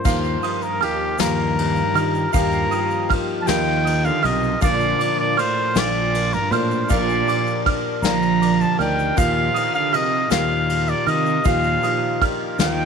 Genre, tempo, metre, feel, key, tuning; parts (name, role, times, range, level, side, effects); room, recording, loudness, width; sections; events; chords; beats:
indie folk with a building arrangement; 53 BPM (dotted quarters); 6/8; straight; A4 = 440 Hz
mellow trumpet; melody; 0.0-12.9 s; G4 to Bb5; -22 LUFS; left 1 dB
warm cello; second line; 0.0-12.9 s; Eb2 to F3; -25 LUFS; right 11 dB
bright grand piano; accompaniment; 0.0-12.9 s; Bb1 to F5; -32 LUFS; right 11 dB
fingerpicked steel-string acoustic guitar; accompaniment; 0.0-2.3 s; F3; -39 LUFS; left 9 dB
picked plugged-in steel-string acoustic guitar; accompaniment; 0.0-12.9 s; Bb2 to Bb4; -27 LUFS; left 12 dB
warm upright piano; arpeggios; 0.0-12.9 s; F5 to F6; -26 LUFS; right 12 dB
mellow brass ensemble; sustained chords; 0.1-12.9 s; Eb3 to Bb4; -32 LUFS; left 13 dB
fingered electric bass; bass; 0.1-12.9 s; Bb1 to Eb3; -24 LUFS; equal
soft brush drum kit; drums; 0.1-12.8 s; crash cymbal, kick drum, ride cymbal, snare drum; -26 LUFS; left 3 dB
egg shaker; percussion; 0.1-12.8 s; -39 LUFS; left 19 dB
light reverb, studio reverb; 1960s-style stereo with parts hard left and right; -17 LUFS; side -6 dB against mid
0.1-12.9 A section
0.1 Ebadd9; 4.6 Bb; 9.2 Ebadd9
| 0.06 1.20 | 2.34 3.48 | 4.62 5.76 | 6.90 8.04 | 9.18 10.32 | 11.46 12.60